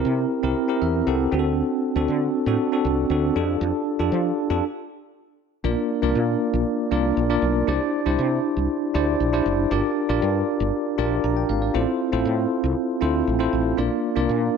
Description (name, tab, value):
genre	1980s-style pop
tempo	118 BPM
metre	4/4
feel	straight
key	unclear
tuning	A4 = 440 Hz
part	bell-like tine electric piano	accompaniment	0.0-14.6 s	Bb3 to Bb5	-21 LUFS	equal	fast stereo tremolo
part	woody fretless electric bass	bass	0.0-14.5 s	F#1 to F3	-25 LUFS	equal	lush chorus
room	moderate recital hall reverb, RT60 1.5 s, digital ambience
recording	none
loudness	-20 LUFS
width	side -6 dB against mid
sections	0.0-5.6 A section; 5.6-14.6 B section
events	tine electric piano fill 0.6-1.6; stop 4.6-5.6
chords	0.0 C7; 1.3 D7; 3.4 F69; 5.6 Bb; 7.7 Cadd9; 9.7 Gm7; 11.7 Fmaj7/A; 13.8 Bb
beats	0.05 0.56 1.07 | 1.58 2.09 2.60 3.10 | 3.61 4.12 4.63 5.14 | 5.65 6.16 6.66 7.17 | 7.68 8.19 8.70 9.21 | 9.71 10.22 10.73 11.24 | 11.75 12.26 12.77 13.28 | 13.78 14.29